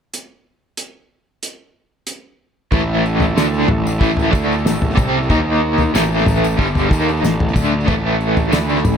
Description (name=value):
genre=psychedelic rock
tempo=93 BPM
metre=4/4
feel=straight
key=unclear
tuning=A4 = 440 Hz
part: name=cloth-damped thuddy drum kit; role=drums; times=0.1-9.0 s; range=hi-hat, kick drum, snare drum, toms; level=-19 LUFS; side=equal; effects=tape echo
part: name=overdriven combo organ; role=sustained chords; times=2.7-9.0 s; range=A#3 to B5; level=-28 LUFS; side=right 4 dB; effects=none
part: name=overdriven electric guitar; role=riff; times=2.7-9.0 s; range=G2 to D#4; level=-17 LUFS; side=equal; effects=tremolo, tape echo
part: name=fuzz picked electric bass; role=bass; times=2.7-9.0 s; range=G1 to D#2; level=-20 LUFS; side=equal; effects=overdrive
part: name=tambourine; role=percussion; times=2.7-9.0 s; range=none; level=-36 LUFS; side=left 10 dB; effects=tape echo
room=light reverb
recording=echo-heavy mix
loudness=-14 LUFS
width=side -7 dB against mid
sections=0.1-2.7 A section; 2.7-9.0 B section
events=none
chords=0.1 N.C.; 2.7 A5; 5.3 D#5; 5.9 A5